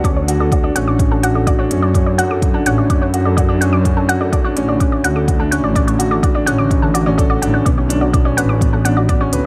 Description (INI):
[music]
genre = piano and strings electronica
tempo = 126 BPM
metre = 4/4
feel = straight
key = D major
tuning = A4 = 440 Hz
[part]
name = granular cloud pad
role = sustained chords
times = 0.0-9.5 s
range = D3 to F#5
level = -31 LUFS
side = equal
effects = none
[part]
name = analog pluck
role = arpeggios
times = 0.0-9.3 s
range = A4 to D6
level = -25 LUFS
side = equal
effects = chorus, sidechain pumping, tape echo
[part]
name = dark upright piano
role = riff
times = 0.0-9.5 s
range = B3 to F#5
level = -20 LUFS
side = equal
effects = low-pass filter, tape echo
[part]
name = clear studio double bass section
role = bass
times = 0.0-9.5 s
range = A1 to F#2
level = -20 LUFS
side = equal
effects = sidechain pumping
[part]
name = electronic hi-hat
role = drums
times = 0.0-9.4 s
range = none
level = -28 LUFS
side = equal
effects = overdrive
[part]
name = electronic kick drum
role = drums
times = 0.0-9.2 s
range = none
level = -19 LUFS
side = equal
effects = none
[sound]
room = digital ambience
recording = none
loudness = -15 LUFS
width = mono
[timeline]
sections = 0.0-9.5 A section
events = none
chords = 0.0 Dmaj7; 7.7 Bmadd9